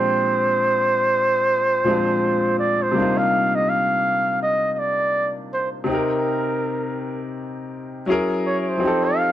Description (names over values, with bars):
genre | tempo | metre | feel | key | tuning
R&B | 82 BPM | 4/4 | swing 62% on 16ths | C minor | A4 = 440 Hz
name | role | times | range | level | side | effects
warm flugelhorn | melody | 0.0-9.3 s | Bb4 to F5 | -20 LUFS | right 1 dB | slapback echo
bright baby grand piano | accompaniment | 0.0-9.3 s | Bb2 to Bb4 | -23 LUFS | left 2 dB | none
room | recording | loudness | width
light reverb | none | -18 LUFS | side -12 dB against mid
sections
0.0-2.9 A section; 2.9-9.3 B section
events
none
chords
0.0 Bb13; 2.9 Cm11; 5.9 Cm7; 8.1 F#9; 8.8 F9